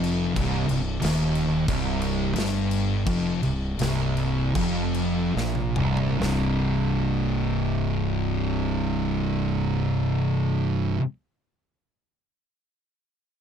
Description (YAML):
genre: stoner and doom metal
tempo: 69-92 BPM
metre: 4/4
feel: straight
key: C minor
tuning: A4 = 440 Hz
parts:
  - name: thick fuzz guitar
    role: riff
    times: 0.0-11.0 s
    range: C2 to C3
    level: -27 LUFS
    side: left 8 dB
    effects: distortion
  - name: thick fuzz guitar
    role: riff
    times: 0.0-11.0 s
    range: C2 to C3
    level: -26 LUFS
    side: right 7 dB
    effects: distortion
  - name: fuzz fingered electric bass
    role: bass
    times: 0.0-10.9 s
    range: C1 to Bb1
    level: -30 LUFS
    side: equal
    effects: overdrive
  - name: big rock drum kit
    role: drums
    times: 0.0-6.4 s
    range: crash cymbal, kick drum, snare drum, toms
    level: -32 LUFS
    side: left 1 dB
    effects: none
room: light reverb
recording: dark, warm production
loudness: -22 LUFS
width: side -8 dB against mid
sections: 0.0-6.2 A section; 6.2-9.7 B section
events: slowing down 0.4-6.2; drum fill 5.3-6.2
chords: 0.0 Cm; 6.2 C5